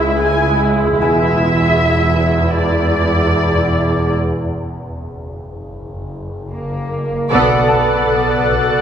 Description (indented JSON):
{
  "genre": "cinematic",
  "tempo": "76 BPM",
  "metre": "4/4",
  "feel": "straight",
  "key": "unclear",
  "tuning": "A4 = 440 Hz",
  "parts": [
    { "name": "muted studio violin section", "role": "melody", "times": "0.0-8.8 s", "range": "D5 to G#5", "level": "-20 LUFS", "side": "left 2 dB", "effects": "none" },
    { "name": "muted studio viola section", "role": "accompaniment", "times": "0.0-8.8 s", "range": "G#3 to A4", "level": "-18 LUFS", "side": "right 1 dB", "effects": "none" },
    { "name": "muted studio cello section", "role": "bass", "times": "0.0-8.8 s", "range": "C#2 to B3", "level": "-19 LUFS", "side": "right 2 dB", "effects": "none" },
    { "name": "muted studio double bass section", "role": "bass", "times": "0.0-8.8 s", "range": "E1 to C#2", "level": "-23 LUFS", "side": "right 1 dB", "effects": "none" },
    { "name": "swarming drone", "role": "drone", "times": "0.0-8.8 s", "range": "F#1 to E2", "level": "-23 LUFS", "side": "equal", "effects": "built-in reverb" },
    { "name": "concert harp", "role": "texture", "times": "1.0-8.8 s", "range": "G#5 to D6", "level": "-24 LUFS", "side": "equal", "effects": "none" },
    { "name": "muted symphonic violin section", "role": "second line", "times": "7.3-8.8 s", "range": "D5", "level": "-18 LUFS", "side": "right 2 dB", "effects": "none" },
    { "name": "concert harp", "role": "riff", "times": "7.3-8.8 s", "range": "B2 to B3", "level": "-20 LUFS", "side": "left 5 dB", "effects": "none" },
    { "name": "muted studio violin section", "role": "texture", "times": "7.3-8.8 s", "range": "F#6 to A6", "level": "-23 LUFS", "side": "left 4 dB", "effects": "none" }
  ],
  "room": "wet recital hall reverb, RT60 1.8 s",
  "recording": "recorded in a church or concert hall",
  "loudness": "-13 LUFS",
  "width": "side -8 dB against mid",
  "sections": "0.0-7.3 A section; 7.3-8.8 B section",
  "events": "break 4.1-7.3; band accent 7.3-8.1",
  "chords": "0.0 C#m; 1.0 E; 4.1 F#; 7.3 Bm7",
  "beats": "0.20 | 0.99 1.78 2.57 3.36 | 4.15 4.94 5.73 6.52 | 7.31 8.10"
}